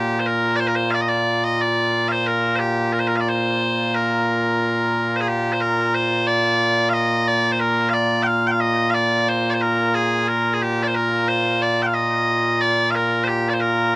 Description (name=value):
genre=scottish traditional, Scottish pipe music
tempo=90 BPM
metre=4/4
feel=straight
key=Bb major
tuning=A4 = 438 Hz
part: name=loud bright bagpipes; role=solo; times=0.0-14.0 s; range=Bb2 to G5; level=-20 LUFS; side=equal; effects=none
room=little or no reverb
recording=recorded outdoors, with no room sound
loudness=-20 LUFS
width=mono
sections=0.0-5.6 A section; 5.6-14.0 A section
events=none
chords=none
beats=| 0.26 0.93 1.59 2.26 | 2.93 3.59 4.26 4.93 | 5.59 6.26 6.93 7.59 | 8.26 8.93 9.59 10.26 | 10.93 11.59 12.26 12.93 | 13.59